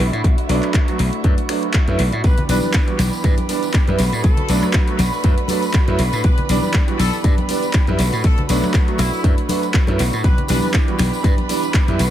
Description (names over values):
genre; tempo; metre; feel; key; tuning
filtered disco house; 120 BPM; 4/4; swing 55% on 16ths; B minor; A4 = 440 Hz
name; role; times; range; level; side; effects
muted chamber violin section; sustained chords; 0.0-12.1 s; E4 to B5; -29 LUFS; right 2 dB; vintage 12-bit sampler grit, sidechain pumping
electric guitar through a small old amp; riff; 0.0-12.1 s; E3 to G4; -27 LUFS; right 2 dB; sidechain pumping, analog delay
slap bass; bass; 0.0-12.1 s; B1 to A2; -19 LUFS; equal; sidechain pumping
house drum kit; drums; 0.0-12.1 s; finger snaps, handclaps, hi-hat; -27 LUFS; left 1 dB; sidechain pumping on hats, analog delay
electronic kick drum; drums; 0.2-11.9 s; none; -16 LUFS; equal; none
clear baby grand piano; accompaniment; 0.5-12.0 s; E3 to F#4; -23 LUFS; right 3 dB; phaser, sidechain pumping
bright trumpet section; melody; 2.2-10.7 s; E4 to B4; -30 LUFS; left 2 dB; sidechain pumping, analog delay
tambourine and congas; percussion; 2.3-12.1 s; none; -27 LUFS; left 3 dB; sidechain pumping on perc, analog delay
room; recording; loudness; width
light reverb, small room ambience; echo-heavy mix; -15 LUFS; side -12 dB against mid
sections
0.0-12.1 A section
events
none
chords
0.0 Bm7; 2.2 Em7/B; 4.0 Bm7; 6.2 Em7/B; 8.0 Bm7; 10.2 Em7/B